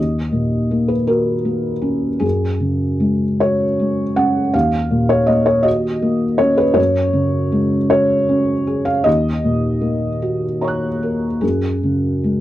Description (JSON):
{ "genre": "neoclassical minimalist piano", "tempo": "53 BPM (dotted quarters)", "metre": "6/8", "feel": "rubato", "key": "Eb minor", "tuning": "A4 = 440 Hz", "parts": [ { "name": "felt-muted upright piano", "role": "solo", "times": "0.0-12.4 s", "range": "Eb2 to Gb6", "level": "-15 LUFS", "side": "equal", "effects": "none" } ], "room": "light reverb", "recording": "dry, close 1970s-style studio recording", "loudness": "-15 LUFS", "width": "side -14 dB against mid", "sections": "0.0-12.4 A section", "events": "none", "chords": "0.0 Ebm7; 2.2 Gbsus2; 4.5 Ebm7; 6.8 Gbsus2; 9.1 Ebm7; 11.4 Gbsus2", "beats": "1.11 | 2.24 3.41 | 4.54 5.66 | 6.78 7.91 | 9.06 10.22 | 11.42" }